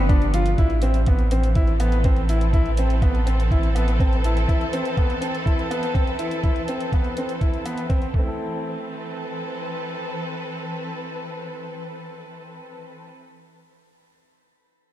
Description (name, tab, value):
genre	piano and strings electronica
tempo	123 BPM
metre	4/4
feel	straight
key	A minor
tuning	A4 = 440 Hz
part	warm studio string section	sustained chords	0.0-13.1 s	E3 to B4	-30 LUFS	equal	sidechain pumping, shimmer reverb
part	warm sub bass	bass	0.0-4.5 s	G1 to A1	-20 LUFS	equal	sidechain pumping
part	clear baby grand piano	riff	0.1-13.2 s	A3 to A4	-27 LUFS	equal	diffuse ambient delay, shimmer reverb
part	electronic hi-hat	drums	0.1-8.1 s	none	-42 LUFS	right 1 dB	overdrive
part	electronic kick drum	drums	0.1-8.2 s	none	-20 LUFS	equal	none
room	light reverb, studio ambience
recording	none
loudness	-20 LUFS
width	side -13 dB against mid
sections	0.6-8.4 A section; 8.4-12.3 B section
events	none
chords	0.0 G7; 0.6 Amadd9; 8.1 Am; 8.4 Amadd9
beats	0.09 | 0.58 1.07 1.55 2.04 | 2.53 3.02 3.50 3.99 | 4.48 4.97 5.46 5.94 | 6.43 6.92 7.41 7.90 | 8.38 8.87 9.36 9.85 | 10.34 10.82 11.31 11.80